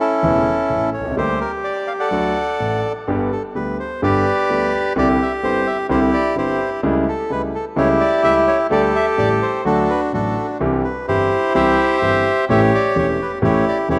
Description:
tango; 128 BPM; 4/4; rubato; G major from 3.1 s; A4 = 440 Hz
bandoneon; melody; 0.0-14.0 s; C#4 to F#5; -20 LUFS; equal
warm concert grand piano; accompaniment; 0.2-14.0 s; E1 to G4; -22 LUFS; equal
moderate lush hall reverb, RT60 3.0 s; rough home demo mix, nothing above 10.9 kHz; -18 LUFS; mono
0.0-3.1 A section; 3.1-14.0 B section
0.0 A; 1.2 Gm/D; 2.1 D; 3.1 G; 5.0 Cadd9; 6.8 A7/C#; 8.7 Dsus4; 9.7 D; 10.6 C; 12.5 A7
0.23 0.70 | 1.17 1.65 2.12 2.60 | 3.08 3.56 4.03 4.50 | 4.97 5.43 5.90 6.37 | 6.83 7.30 7.77 8.24 | 8.71 9.18 9.65 10.13 | 10.61 11.08 11.55 12.02 | 12.49 12.96 13.42 13.88

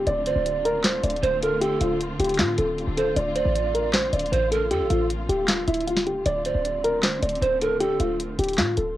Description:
hip hop, trap; 155 BPM; 4/4; half-time; D minor; A4 = 440 Hz
dark concert grand piano; melody; 0.0-9.0 s; E4 to D5; -24 LUFS; left 1 dB; cassette tape
dark symphonic string section; sustained chords; 0.0-9.0 s; D3 to F4; -32 LUFS; equal; cassette tape
short 808-style bass; bass; 0.0-9.0 s; C1 to A2; -29 LUFS; equal
trap drum kit; drums; 0.1-8.9 s; handclaps, hi-hat, snare drum; -26 LUFS; equal; cassette tape
breathy mellow pan flute; second line; 0.3-8.2 s; A4 to D5; -28 LUFS; right 7 dB; cassette tape, analog delay
light reverb; home recording on cassette; -21 LUFS; side -14 dB against mid
0.0-9.0 A section
0.0 Dm7
| 0.07 0.45 0.84 1.23 | 1.61 2.00 2.39 2.77 | 3.16 3.55 3.94 4.32 | 4.71 5.10 5.49 5.87 | 6.26 6.65 7.03 7.42 | 7.81 8.20 8.58 8.97

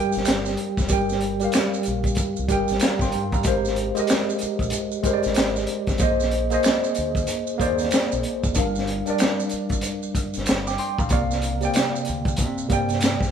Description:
R&B, neo-soul; 94 BPM; 4/4; swing 62% on 16ths; A4 = 443 Hz
tine electric piano; accompaniment; 0.0-13.3 s; C3 to D6; -23 LUFS; equal; medium stereo tremolo
crunchy breakbeat drum kit; drums; 0.1-13.3 s; hi-hat, kick drum, snare drum; -24 LUFS; equal
maracas and finger snaps; percussion; 0.1-13.3 s; -33 LUFS; right 4 dB
deep dub fingered electric bass; bass; 0.2-13.3 s; F1 to C3; -30 LUFS; equal
moderate large studio reverb, RT60 0.9 s; band playing live in one room; -20 LUFS; side -8 dB against mid
0.0-13.3 A section
0.0 Gm7; 3.4 Abmaj9; 6.0 Bb9sus4; 8.6 Gm7; 11.1 C9sus4
0.26 | 0.90 1.53 2.17 2.81 | 3.45 4.09 4.73 5.36 | 6.00 6.64 7.28 7.92 | 8.56 9.19 9.83 10.47 | 11.11 11.75 12.39 13.02

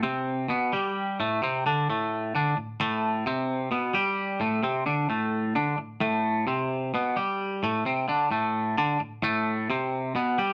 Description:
rock; 261 BPM (eighths); 7/8; straight; A minor; A4 = 440 Hz
twangy electric guitar; solo; 0.0-10.5 s; A2 to G4; -27 LUFS; equal; phaser
moderate studio reverb, RT60 0.6 s; band playing live in one room; -27 LUFS; mono
0.0-10.5 A section
0.0 Am
0.03 0.26 0.49 0.72 0.95 | 1.18 1.41 1.64 1.87 2.10 2.33 2.56 | 2.79 3.02 3.25 3.48 3.72 3.95 4.18 | 4.41 4.64 4.87 5.10 5.33 5.56 5.79 | 6.02 6.25 6.48 6.71 6.94 7.17 7.40 | 7.63 7.86 8.09 8.32 8.55 8.78 9.01 | 9.24 9.47 9.70 9.93 10.16 10.39

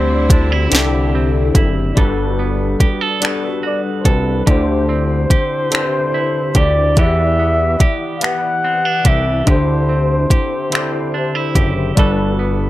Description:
slow six-eight R&B; 48 BPM (dotted quarters); 6/8; straight; G major; A4 = 438 Hz
breathy flugelhorn; melody; 0.0-11.6 s; B4 to F#5; -19 LUFS; left 1 dB; ping-pong delay
semi-hollow electric guitar; second line; 0.0-12.7 s; D3 to A4; -23 LUFS; right 6 dB
overdriven tine electric piano; accompaniment; 0.0-12.7 s; D3 to F#5; -20 LUFS; left 3 dB; ensemble chorus
rich studio string section; sustained chords; 0.0-1.9 s; D3 to E4; -29 LUFS; right 2 dB
fat analog bass; bass; 0.0-12.7 s; F#1 to E2; -17 LUFS; equal
smooth R&B drum kit; drums; 0.3-12.2 s; finger snaps, hi-hat, kick drum, snare drum; -14 LUFS; equal
light reverb; -13 LUFS; side -15 dB against mid
0.0-2.0 A section; 2.0-12.7 B section
0.0 D9sus4; 2.0 Gmaj9; 4.5 D9sus4; 7.0 Em7; 9.5 D9sus4; 12.0 Gmaj9
0.72 | 1.97 3.22 | 4.47 5.72 | 6.97 8.22 | 9.47 10.72 | 11.97

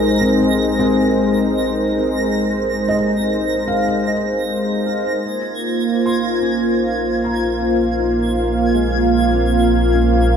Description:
ambient; 76 BPM; 4/4; straight; Bb minor; A4 = 440 Hz
warm analog pad; sustained chords; 0.0-10.4 s; Ab3 to F5; -17 LUFS; right 1 dB; chorus
felt-muted upright piano; arpeggios; 0.0-10.4 s; Ab3 to C6; -23 LUFS; left 2 dB; tape echo
warm sub bass; bass; 0.0-10.4 s; Bb1; -24 LUFS; equal
twinkling granular texture; texture; 0.0-10.4 s; Ab6 to Bb6; -27 LUFS; right 2 dB; built-in reverb
wet plate reverb, RT60 3.2 s; echo-heavy mix; -15 LUFS; side -7 dB against mid
0.0-5.2 A section; 5.2-10.4 B section
fade-out on sub bass 0.0-5.2
0.0 Bbmadd9
0.48 1.26 | 2.05 2.84 3.63 4.42 | 5.21 6.00 6.79 7.58 | 8.37 9.16 9.95

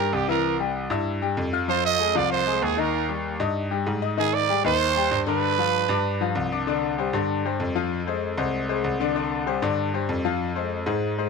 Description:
latin, salsa; 193 BPM; 4/4; straight; C minor; A4 = 444 Hz
growling trumpet; melody; 0.0-6.3 s; G4 to Eb5; -23 LUFS; right 13 dB
bright concert grand piano; accompaniment; 0.0-11.3 s; D3 to F6; -26 LUFS; left 11 dB
bright concert grand piano; bass; 0.0-11.3 s; C2 to Ab2; -27 LUFS; right 1 dB
light reverb, studio ambience; 1960s-style stereo with parts hard left and right; -22 LUFS; side -4 dB against mid
0.0-6.7 A section; 6.7-11.3 B section
0.4 C; 1.7 Fm7; 2.9 Eb; 4.2 Abmaj7; 5.4 Csus2; 7.9 Fm; 9.2 Csus2; 10.4 Fm
0.13 | 0.44 0.75 1.06 1.38 | 1.69 2.00 2.31 2.62 | 2.93 3.24 3.56 3.87 | 4.18 4.49 4.80 5.11 | 5.42 5.73 6.04 6.36 | 6.67 6.98 7.29 7.60 | 7.91 8.22 8.53 8.85 | 9.16 9.47 9.78 10.09 | 10.40 10.71 11.02

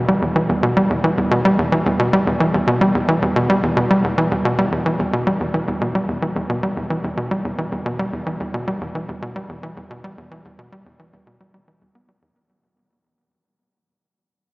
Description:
ambient; 110 BPM; 4/4; straight; E minor; A4 = 440 Hz
tight sequencer bass; solo; 0.0-12.3 s; E2 to B3; -17 LUFS; equal; tape echo
wet cathedral reverb, RT60 6.2 s; in a vast, echoing space, cassette tape, small speaker sound; -17 LUFS; side -23 dB against mid
0.0-3.6 A section; 3.6-12.4 B section
fade-out 3.6-12.4
0.36 0.90 | 1.45 1.99 2.54 3.08 | 3.63 4.17 4.72 5.27 | 5.81 6.36 6.90 7.45 | 7.99 8.54 9.08 9.63 | 10.18 10.72 11.27 11.81

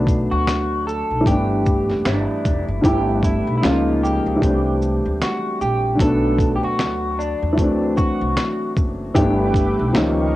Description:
lo-fi hip hop; 76 BPM; 4/4; swing 59% on 16ths; G major; A4 = 441 Hz
electric guitar through a small old amp; melody; 0.0-10.3 s; D4 to A4; -24 LUFS; equal; wide subtle chorus, low-pass filter
dark upright piano; accompaniment; 0.0-10.4 s; C#3 to E4; -20 LUFS; left 1 dB; low-pass filter, cassette tape
upright bass; bass; 0.0-10.4 s; F1 to E2; -23 LUFS; equal
lo-fi sampler-style drum kit; drums; 0.1-10.2 s; finger snaps, hi-hat, kick drum, shaker, snare drum; -21 LUFS; equal; cassette tape
lush unison pad; sustained chords; 9.2-10.4 s; A#3 to D6; -30 LUFS; right 1 dB; chorus, low-pass filter, cassette tape
moderate small room ambience, RT60 0.5 s; home recording on cassette, faint mains hum; -17 LUFS; side -16 dB against mid
0.0-2.8 A section; 2.8-10.4 A section
0.0 Bm7; 1.3 G6; 3.6 C#69; 4.4 C69; 6.0 Bm7; 7.6 D7; 9.2 G6
0.47 1.26 2.05 | 2.84 3.62 4.42 5.20 | 5.99 6.78 7.57 8.36 | 9.15 9.94

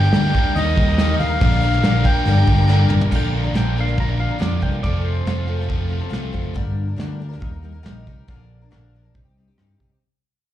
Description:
folk rock and heartland rock; 140 BPM; 4/4; straight; A4 = 443 Hz
accordion; melody; 0.0-2.9 s; Eb5 to G5; -24 LUFS; right 1 dB; plate reverb, slapback echo, tape echo
picked twelve-string acoustic guitar; accompaniment; 0.0-10.0 s; G2 to Bb4; -27 LUFS; left 8 dB; plate reverb, slapback echo
tonewheel organ; sustained chords; 0.0-3.1 s; Bb3 to Bb4; -33 LUFS; equal
crunchy overdriven guitar; riff; 0.0-6.6 s; F2 to Bb4; -26 LUFS; equal; slapback echo
fingered electric bass; bass; 0.0-10.0 s; F1 to C3; -20 LUFS; equal
soft brush drum kit; drums; 0.0-9.9 s; crash cymbal, hi-hat, kick drum, rim click, snare drum, toms; -22 LUFS; equal
pedal steel guitar; second line; 3.2-6.3 s; C5 to Bb5; -32 LUFS; right 2 dB; plate reverb, slapback echo
light reverb; live gig heard through the venue's PA, club reverb; -16 LUFS; side -12 dB against mid
0.0-3.1 A section; 3.1-10.0 B section
drum fill 2.7-3.1; fade-out 3.1-10.0
0.0 Gm; 0.6 Eb; 1.4 Bb; 2.3 Gm; 3.1 Bb; 4.8 F; 6.6 Gm; 7.4 Eb; 8.3 Bb; 9.1 Cm
0.14 0.56 0.99 | 1.41 1.84 2.26 2.69 | 3.12 3.55 3.97 4.40 | 4.83 5.26 5.69 6.12 | 6.55 6.99 7.42 7.85 | 8.28 8.71 9.14 9.57

